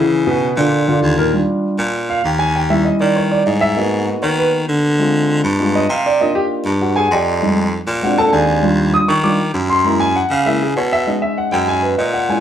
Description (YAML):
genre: Afro-Cuban jazz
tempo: 197 BPM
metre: 4/4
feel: straight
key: unclear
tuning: A4 = 440 Hz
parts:
  - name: warm concert grand piano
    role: accompaniment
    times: 0.0-12.4 s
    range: A#2 to Eb6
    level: -15 LUFS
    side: equal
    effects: none
  - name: growling baritone saxophone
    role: bass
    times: 0.0-12.4 s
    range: Eb2 to Eb3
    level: -18 LUFS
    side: equal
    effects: none
room: wet studio reverb, RT60 0.6 s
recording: heard from further back in the room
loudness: -13 LUFS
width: side -10 dB against mid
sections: 0.0-1.3 A section; 1.3-11.1 B section; 11.1-12.4 B section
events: grand piano solo 1.3-12.4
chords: 0.1 C#m7; 0.7 A#; 1.3 Ebmaj7; 2.5 Eb7b9; 3.8 Abm9; 5.0 Dm7b5; 5.6 G7b9; 6.2 Cm11 (rootless); 7.4 Fm7; 8.0 Bb7; 8.6 Ebmaj7; 9.8 Gb7; 11.1 B6